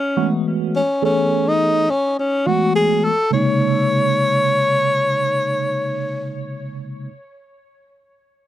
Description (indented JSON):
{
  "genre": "jazz",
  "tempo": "105 BPM",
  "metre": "4/4",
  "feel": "straight",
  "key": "unclear",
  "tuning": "A4 = 440 Hz",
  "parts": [
    { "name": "breathy tenor saxophone", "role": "melody", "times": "0.0-6.4 s", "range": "Db4 to Db5", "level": "-18 LUFS", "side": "left 1 dB", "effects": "none" },
    { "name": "tine electric piano", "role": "accompaniment", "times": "0.2-7.1 s", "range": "C3 to A4", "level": "-20 LUFS", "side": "right 2 dB", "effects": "medium stereo tremolo, phaser" }
  ],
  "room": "light reverb",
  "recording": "dry, close 1970s-style studio recording",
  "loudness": "-16 LUFS",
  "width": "side -12 dB against mid",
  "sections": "0.0-3.3 A section; 3.3-5.6 B section",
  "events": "none",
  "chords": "0.0 Gbm11; 3.3 Bbm11"
}